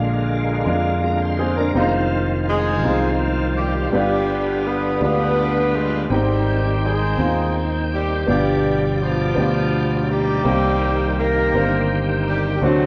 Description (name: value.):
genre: slow gospel.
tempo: 55 BPM (dotted quarters).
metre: 6/8.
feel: straight.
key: C minor.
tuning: A4 = 441 Hz.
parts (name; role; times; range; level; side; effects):
warm upright piano; accompaniment; 0.0-12.9 s; G2 to Bb4; -25 LUFS; equal; none.
bright tonewheel organ; sustained chords; 0.0-12.9 s; B2 to G5; -27 LUFS; equal; fast rotary speaker, overdrive, chorus vibrato.
fingered electric bass; bass; 0.0-12.9 s; F1 to F2; -25 LUFS; equal; none.
breathy tenor saxophone; melody; 2.5-12.9 s; F3 to B3; -26 LUFS; equal; none.
clear horn section; melody; 2.5-12.9 s; A3 to B4; -28 LUFS; equal; none.
room: moderate large studio reverb, RT60 0.9 s.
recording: band playing live in one room.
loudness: -20 LUFS.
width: mono.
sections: 0.0-12.9 A section.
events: none.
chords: 0.0 Bb7; 1.8 Fm7; 3.9 G7; 6.1 Abmaj7; 8.3 G7; 10.4 Cm7.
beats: 0.66 | 1.75 2.84 | 3.93 5.01 | 6.10 7.19 | 8.28 9.36 | 10.45 11.54 | 12.62.